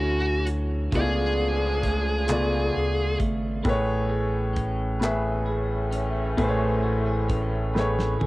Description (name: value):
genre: slow six-eight R&B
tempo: 44 BPM (dotted quarters)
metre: 6/8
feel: straight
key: A major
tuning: A4 = 440 Hz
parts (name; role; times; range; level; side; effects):
- high-gain lead guitar; melody; 0.0-3.2 s; F#4 to G#4; -27 LUFS; equal; distortion, cassette tape
- clean electric guitar; second line; 0.0-8.3 s; C#3 to B4; -32 LUFS; right 3 dB; lush chorus, cassette tape
- warm baby grand piano; accompaniment; 0.0-8.3 s; A2 to E5; -26 LUFS; left 1 dB; cassette tape
- warm horn section; stabs; 0.0-8.3 s; E3 to G#4; -35 LUFS; left 1 dB; cassette tape
- round analog bass; bass; 0.0-8.3 s; G#1 to D2; -29 LUFS; equal; none
- damped 70s drum kit; drums; 0.5-8.3 s; handclaps, hi-hat, kick drum, snare drum, toms; -29 LUFS; equal; none
room: light reverb, small room ambience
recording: home recording on cassette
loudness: -22 LUFS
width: side -19 dB against mid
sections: 0.0-8.3 A section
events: drum fill 7.7-8.3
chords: 0.0 Dmaj9; 0.9 C#7b9b13; 3.7 Amaj9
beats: | 0.93 2.29 | 3.66 5.02 | 6.38 7.75